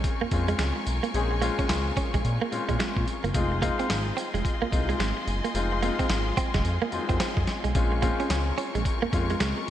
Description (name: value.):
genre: R&B, new jack swing.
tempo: 109 BPM.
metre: 4/4.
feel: swing 62% on 16ths.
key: Bb minor.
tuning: A4 = 438 Hz.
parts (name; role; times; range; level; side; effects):
clear baby grand piano; accompaniment; 0.0-9.7 s; Gb3 to Ab4; -31 LUFS; left 4 dB; none.
warm studio string section; sustained chords; 0.0-9.7 s; F4 to Db6; -34 LUFS; left 1 dB; none.
smooth synth bass; bass; 0.0-9.5 s; F1 to Bb2; -28 LUFS; equal; none.
boom bap sampler-style drum kit; drums; 0.0-9.6 s; hi-hat, kick drum, snare drum, tambourine; -29 LUFS; equal; gated reverb.
direct-recorded clean electric guitar; riff; 0.2-9.6 s; Ab3 to Db4; -32 LUFS; right 6 dB; analog chorus.
room: moderate lush hall reverb, RT60 2.1 s.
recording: bright 1980s-style digital production.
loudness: -24 LUFS.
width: side -11 dB against mid.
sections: 0.0-9.7 A section.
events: none.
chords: 0.0 Bbm7; 3.3 Fm7; 7.8 Bbm7.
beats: 0.04 0.59 | 1.14 1.70 2.25 2.80 | 3.35 3.90 4.45 5.00 | 5.55 6.10 6.65 7.20 | 7.75 8.30 8.85 9.40.